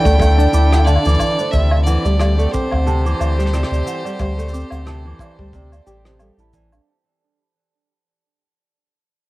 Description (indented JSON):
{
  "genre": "folktronica",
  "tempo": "90 BPM",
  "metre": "4/4",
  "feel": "swing 56% on 16ths",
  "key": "unclear",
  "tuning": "A4 = 440 Hz",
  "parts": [
    { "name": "bright violin", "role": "melody", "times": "0.0-6.2 s", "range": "C5 to G5", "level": "-23 LUFS", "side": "equal", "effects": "cassette tape, plate reverb" },
    { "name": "worn celesta", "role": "second line", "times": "0.0-6.9 s", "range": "D4 to D6", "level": "-25 LUFS", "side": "right 7 dB", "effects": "cassette tape, analog delay, plate reverb" },
    { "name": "dark string quartet", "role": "sustained chords", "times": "0.0-6.9 s", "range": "D3 to A4", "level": "-27 LUFS", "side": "equal", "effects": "cassette tape, plate reverb" },
    { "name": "nylon-string guitar", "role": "arpeggios", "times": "0.0-6.7 s", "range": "C3 to G4", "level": "-23 LUFS", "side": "equal", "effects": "vintage 12-bit sampler grit, cassette tape, plate reverb" },
    { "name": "warm sub bass", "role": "bass", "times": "0.1-6.8 s", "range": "A1 to D2", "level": "-15 LUFS", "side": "equal", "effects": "transformer saturation" },
    { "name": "cabasa, woodblock and rim click", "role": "drums", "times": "0.1-6.8 s", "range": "none", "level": "-27 LUFS", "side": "left 1 dB", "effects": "cassette tape" },
    { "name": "kick drum", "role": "drums", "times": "0.1-6.7 s", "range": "none", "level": "-22 LUFS", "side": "equal", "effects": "cassette tape" }
  ],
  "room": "light reverb",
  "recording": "home recording on cassette",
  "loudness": "-14 LUFS",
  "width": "side -18 dB against mid",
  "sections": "0.0-6.9 A section",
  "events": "fade-out 0.0-6.9",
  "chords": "0.0 Dsus2; 1.5 Am7/D",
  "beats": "0.20 0.87 | 1.53 2.20 2.87 3.54 | 4.20 4.87 5.54 6.20"
}